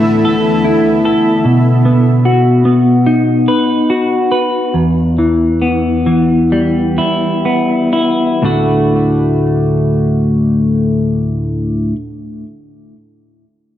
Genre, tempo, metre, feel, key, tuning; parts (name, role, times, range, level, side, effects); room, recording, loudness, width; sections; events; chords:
rock; 60-75 BPM; 4/4; straight; D major; A4 = 440 Hz
granular cloud pad; sustained chords; 0.0-1.4 s; D3 to E5; -18 LUFS; right 2 dB; built-in reverb
clean electric guitar; arpeggios; 0.0-12.0 s; D2 to B4; -11 LUFS; left 1 dB; analog chorus, analog delay
wet recital hall reverb, RT60 1.4 s; -10 LUFS; side -11 dB against mid
0.0-8.4 A section; 8.4-12.5 B section
slowing down 1.4-8.4
0.0 Asus2; 1.4 B; 4.7 Em; 8.4 D